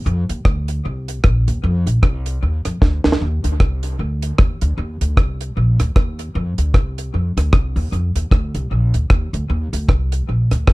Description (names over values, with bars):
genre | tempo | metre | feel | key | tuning
ska | 153 BPM | 4/4 | swing 59% on 8ths | unclear | A4 = 440 Hz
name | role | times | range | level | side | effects
upright bass | bass | 0.0-10.7 s | Bb1 to F2 | -18 LUFS | equal | none
deep reggae drum kit | drums | 0.1-10.7 s | hi-hat, kick drum, rim click, snare drum | -16 LUFS | equal | dub echo
room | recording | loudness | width
little or no reverb | dark, warm production | -16 LUFS | side -21 dB against mid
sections
0.0-10.7 A section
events
drum fill 2.8-3.2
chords
none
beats
| 0.07 0.46 0.85 1.25 | 1.64 2.03 2.42 2.82 | 3.21 3.60 4.00 4.39 | 4.78 5.18 5.57 5.96 | 6.36 6.75 7.14 7.53 | 7.92 8.32 8.71 9.10 | 9.49 9.89 10.28 10.67